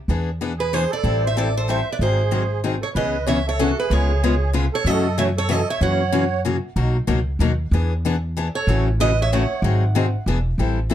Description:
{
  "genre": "acoustic string swing (jazz manouche)",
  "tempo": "189 BPM",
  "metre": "3/4",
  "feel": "swing 59% on 8ths",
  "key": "C# minor",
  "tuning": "A4 = 440 Hz",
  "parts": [
    { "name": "picked steel-string acoustic guitar", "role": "accompaniment", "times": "0.1-10.9 s", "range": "B2 to A4", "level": "-23 LUFS", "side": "left 4 dB", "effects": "none" },
    { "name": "upright bass", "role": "bass", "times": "0.1-10.9 s", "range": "E1 to F#2", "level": "-21 LUFS", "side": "equal", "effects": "none" },
    { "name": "picked steel-string acoustic guitar", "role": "melody", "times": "0.6-6.4, 8.6-10.2 s", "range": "A4 to F#5", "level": "-24 LUFS", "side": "right 3 dB", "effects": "plate reverb" },
    { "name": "musette accordion", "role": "second line", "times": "0.6-6.4, 8.5-9.6 s", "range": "F#4 to C#5", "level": "-27 LUFS", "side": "right 7 dB", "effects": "none" }
  ],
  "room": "light reverb",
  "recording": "dark, warm production",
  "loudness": "-18 LUFS",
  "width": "side -11 dB against mid",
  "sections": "0.0-3.0 A section; 3.0-10.6 B section",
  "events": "none",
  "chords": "0.1 E7; 1.0 Am7; 2.0 G#7; 3.0 C#m9; 3.9 C#7; 4.9 F#m7; 5.8 F#7; 6.8 Bmaj7; 7.7 E7; 8.7 A6; 9.6 G#7; 10.3 E7"
}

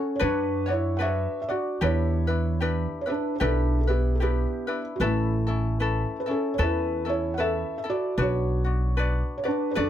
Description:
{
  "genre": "Hawaiian",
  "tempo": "75 BPM",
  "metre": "4/4",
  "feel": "swing 59% on 8ths",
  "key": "unclear",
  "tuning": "A4 = 440 Hz",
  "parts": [
    { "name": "felt-muted upright piano", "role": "melody", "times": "0.0-9.9 s", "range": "A3 to F#5", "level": "-27 LUFS", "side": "right 1 dB", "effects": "none" },
    { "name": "ukulele", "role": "accompaniment", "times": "0.0-9.9 s", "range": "C#4 to D5", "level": "-30 LUFS", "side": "left 3 dB", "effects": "none" },
    { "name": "upright bass", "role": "bass", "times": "0.2-9.9 s", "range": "A1 to F#2", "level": "-26 LUFS", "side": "right 1 dB", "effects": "none" }
  ],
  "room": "light reverb",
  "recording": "close, detailed microphones",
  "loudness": "-23 LUFS",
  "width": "side -10 dB against mid",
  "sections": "0.0-9.9 A section",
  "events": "none",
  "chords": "0.0 Bmadd9; 1.8 Em7; 5.0 Aadd9; 8.2 Bm"
}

